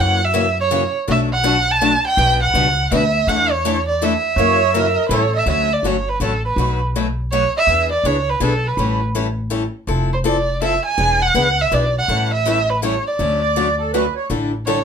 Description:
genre	acoustic string swing (jazz manouche)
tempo	163 BPM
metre	3/4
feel	swing 62% on 8ths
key	B minor, D major from 5.5 s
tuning	A4 = 439 Hz
part	dark violin	melody	0.0-14.8 s	A4 to A5	-18 LUFS	right 3 dB	none
part	picked steel-string acoustic guitar	accompaniment	0.0-14.8 s	B2 to A4	-21 LUFS	left 5 dB	none
part	upright bass	bass	0.0-14.8 s	E1 to F#2	-21 LUFS	equal	none
part	accordion	second line	4.4-5.4, 13.4-14.3 s	A4 to D5	-18 LUFS	right 5 dB	light tremolo tuning
room	moderate studio ambience, RT60 0.5 s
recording	band playing live in one room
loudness	-15 LUFS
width	side -7 dB against mid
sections	0.0-5.5 A section; 5.5-14.3 B section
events	none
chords	0.0 F#7; 1.1 Bm7; 2.2 Gmaj7/B; 3.3 E7sus4; 4.4 F#7; 5.1 A7; 5.5 Dmaj7; 6.6 B7; 7.7 E7; 8.8 A7; 9.9 Fmaj7; 11.0 E7; 12.1 A7; 13.2 Dmaj7; 14.3 A7sus4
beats	0.34 0.71 | 1.08 1.44 1.81 | 2.17 2.54 2.91 | 3.27 3.64 4.01 | 4.37 4.74 5.11 | 5.47 5.84 6.21 | 6.57 6.94 7.31 | 7.67 8.04 8.41 | 8.78 9.14 9.51 | 9.88 10.25 10.61 | 10.98 11.35 11.72 | 12.09 12.45 12.82 | 13.19 13.56 13.92 | 14.29 14.66

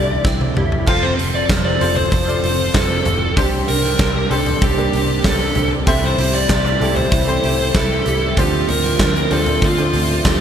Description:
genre	piano-driven pop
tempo	96 BPM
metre	4/4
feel	straight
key	F major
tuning	A4 = 440 Hz
part	dark smooth lead guitar	melody	0.0-10.4 s	F4 to F5	-20 LUFS	equal	overdrive
part	clear upright piano	accompaniment	0.0-10.4 s	C3 to D5	-24 LUFS	equal	none
part	airy breathy pad	sustained chords	0.0-10.4 s	C3 to A4	-28 LUFS	equal	none
part	picked steel-string acoustic guitar	riff	0.0-10.4 s	F2 to D5	-24 LUFS	right 4 dB	ensemble chorus
part	vintage muted picked electric bass	bass	0.0-10.4 s	F1 to D2	-22 LUFS	equal	none
part	huge arena drum kit	drums	0.2-10.4 s	crash cymbal, handclaps, hi-hat, kick drum, snare drum, toms	-19 LUFS	equal	gated reverb
room	light reverb, small room ambience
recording	bright 1980s-style digital production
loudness	-14 LUFS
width	side -8 dB against mid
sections	0.9-10.4 A section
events	drum fill 0.2-0.9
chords	0.0 Cadd9; 0.9 F; 3.4 Csus2; 5.9 Am7/C; 8.4 Dm7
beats	0.25 | 0.87 1.50 2.12 2.75 | 3.38 4.00 4.63 5.25 | 5.88 6.50 7.13 7.75 | 8.38 9.01 9.63 10.26

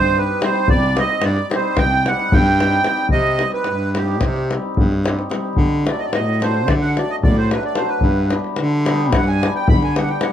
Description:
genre	balkan folk, Balkan wedding band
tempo	220 BPM (eighths)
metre	9/8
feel	straight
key	C hungarian minor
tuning	A4 = 439 Hz
part	accordion	melody	0.0-10.3 s	G4 to B5	-20 LUFS	right 4 dB	light tremolo tuning
part	hammered dulcimer	accompaniment	0.0-10.3 s	F#3 to G4	-24 LUFS	left 2 dB	none
part	warm baritone saxophone	bass	0.0-10.2 s	C2 to D3	-19 LUFS	equal	none
part	davul	percussion	0.4-10.3 s	none	-19 LUFS	left 2 dB	none
room	light reverb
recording	close, detailed microphones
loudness	-15 LUFS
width	side -10 dB against mid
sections	0.0-3.1 A section; 3.1-10.3 B section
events	accordion solo 3.1-10.3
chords	0.0 Cm; 5.6 D; 8.0 G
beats	0.13 0.40 | 0.67 0.94 1.21 1.48 1.75 2.02 2.29 2.57 2.84 | 3.11 3.38 3.65 3.92 4.20 4.47 4.74 5.01 5.29 | 5.56 5.83 6.11 6.38 6.65 6.92 7.20 7.47 7.74 | 8.02 8.29 8.56 8.84 9.11 9.38 9.65 9.93 10.20

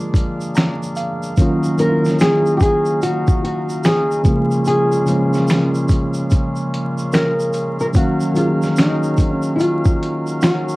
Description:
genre	lo-fi hip hop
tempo	73 BPM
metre	4/4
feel	swing 63% on 16ths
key	Eb minor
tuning	A4 = 435 Hz
part	nylon-string guitar	melody	0.0-10.8 s	Eb4 to Bb4	-19 LUFS	equal	cassette tape
part	tine electric piano	accompaniment	0.0-10.8 s	Db3 to Bb5	-19 LUFS	equal	overdrive, fast stereo tremolo, cassette tape
part	hand-pumped harmonium	sustained chords	0.0-10.8 s	Bb2 to F5	-27 LUFS	equal	stereo widening, cassette tape
part	dusty soul sampler-style drum kit	drums	0.1-10.7 s	finger snaps, hi-hat, kick drum, snare drum	-17 LUFS	equal	cassette tape
part	tube shaker	percussion	0.1-10.8 s	none	-38 LUFS	right 3 dB	none
room	wet booth ambience, RT60 0.2 s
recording	home recording on cassette, vinyl crackle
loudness	-15 LUFS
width	side -21 dB against mid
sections	0.0-10.8 A section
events	none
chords	0.0 Bb7; 1.4 Ebm9; 4.2 Db6; 7.9 Ebm9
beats	0.55 | 1.37 2.19 3.02 3.84 | 4.66 5.48 6.30 7.13 | 7.95 8.77 9.59 10.41

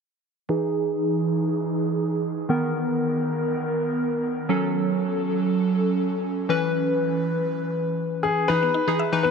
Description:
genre	pop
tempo	120 BPM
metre	4/4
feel	straight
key	unclear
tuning	A4 = 440 Hz
part	warm analog keys	accompaniment	0.5-9.3 s	D#3 to B4	-25 LUFS	equal	chorus, low-pass filter
part	airy breathy pad	sustained chords	0.5-8.5 s	D#3 to B4	-25 LUFS	right 1 dB	chorus, low-pass filter
part	warm concert grand piano	melody	8.2-9.3 s	G#4 to B4	-22 LUFS	left 4 dB	none
part	mallet-like synth pluck	arpeggios	8.5-9.3 s	E3 to E5	-28 LUFS	left 5 dB	chorus
room	light reverb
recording	none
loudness	-22 LUFS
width	side -6 dB against mid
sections	0.5-8.5 A section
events	filter sweep 0.5-8.5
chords	0.5 Emaj7; 2.5 Bmaj7; 4.5 A6; 6.5 C#m7; 8.5 Emaj7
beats	| 0.49 0.99 1.49 1.99 | 2.49 2.99 3.49 3.99 | 4.49 4.99 5.49 5.99 | 6.49 6.99 7.49 7.99 | 8.49 8.99

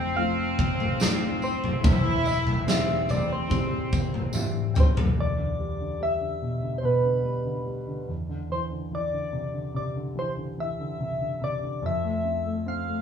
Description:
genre	pop ballad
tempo	72 BPM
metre	4/4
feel	straight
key	unclear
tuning	A4 = 441 Hz
part	soft struck synth lead	melody	0.0-13.0 s	B4 to G5	-30 LUFS	equal	chorus
part	warm symphonic cello section	second line	0.0-4.7 s	C4 to E4	-30 LUFS	right 1 dB	none
part	warm concert grand piano	accompaniment	0.0-13.0 s	E1 to G5	-30 LUFS	left 1 dB	none
part	huge arena drum kit	drums	0.6-5.2 s	kick drum, snare drum, toms	-25 LUFS	equal	none
part	tambourine	percussion	1.0-4.9 s	none	-41 LUFS	right 2 dB	none
room	wet studio reverb, RT60 0.7 s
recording	band playing live in one room, small room ambience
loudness	-24 LUFS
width	side -7 dB against mid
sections	0.0-5.2 A section; 5.2-13.0 B section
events	grand piano fill 3.9-5.2; drum fill 4.3-5.2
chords	0.0 F; 1.8 C/E; 5.2 Em7; 8.1 Cadd9/E; 11.8 F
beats	0.17 1.01 | 1.84 2.67 3.51 4.34 | 5.17 6.01 6.84 7.67 | 8.51 9.34 10.17 11.01 | 11.84 12.67

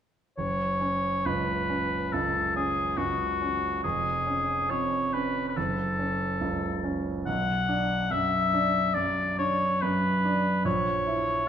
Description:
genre	classical, romantic duo for oboe and grand piano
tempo	70 BPM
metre	4/4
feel	rubato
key	F# minor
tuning	A4 = 440 Hz
part	clear oboe	melody	0.4-11.5 s	F#4 to F#5	-27 LUFS	left 2 dB	none
part	clear concert grand piano	accompaniment	0.4-11.5 s	E#1 to E4	-29 LUFS	right 2 dB	none
room	wet recital hall reverb, RT60 1.5 s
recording	minimal, uncompressed stereo recording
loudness	-25 LUFS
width	side -9 dB against mid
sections	0.4-11.5 A section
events	none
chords	0.4 F#5; 3.8 C#/E#; 5.6 F#m; 7.3 Bm; 10.7 A#dim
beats	| 0.38 1.26 2.13 2.97 | 3.83 4.71 5.57 6.42 | 7.27 8.11 8.95 9.81 | 10.65 11.47

